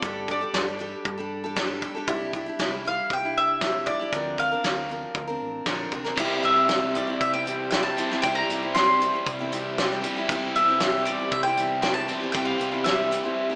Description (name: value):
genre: folk rock and heartland rock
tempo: 117 BPM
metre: 4/4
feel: straight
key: unclear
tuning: A4 = 440 Hz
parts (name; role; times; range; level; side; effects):
- mandolin; melody; 0.0-13.6 s; D5 to C6; -27 LUFS; equal; none
- picked steel-string acoustic guitar; accompaniment; 0.0-13.6 s; G2 to Bb4; -32 LUFS; equal; slapback echo
- hollow-body short-scale fingered electric bass; bass; 0.0-13.2 s; A1 to C3; -46 LUFS; equal; none
- soft brush drum kit; drums; 0.0-13.2 s; crash cymbal, hi-hat, kick drum, snare drum; -31 LUFS; equal; none
- dark chamber string section; sustained chords; 6.2-13.6 s; E3 to C5; -40 LUFS; equal; none
- overdriven electric guitar; riff; 6.2-13.6 s; C3 to G4; -33 LUFS; equal; slapback echo
room: wet recital hall reverb, RT60 1.7 s, studio ambience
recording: big arena sound, small speaker sound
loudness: -25 LUFS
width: mono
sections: 0.0-6.2 A section; 6.2-13.6 B section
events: none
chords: 0.0 Gsus2; 2.1 Cadd9; 4.1 Bbadd9/D; 6.2 C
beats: | 0.03 0.54 1.05 1.56 | 2.08 2.59 3.10 3.61 | 4.13 4.64 5.16 5.67 | 6.18 6.70 7.21 7.72 | 8.24 8.75 9.27 9.78 | 10.29 10.81 11.32 11.84 | 12.35 12.86 13.38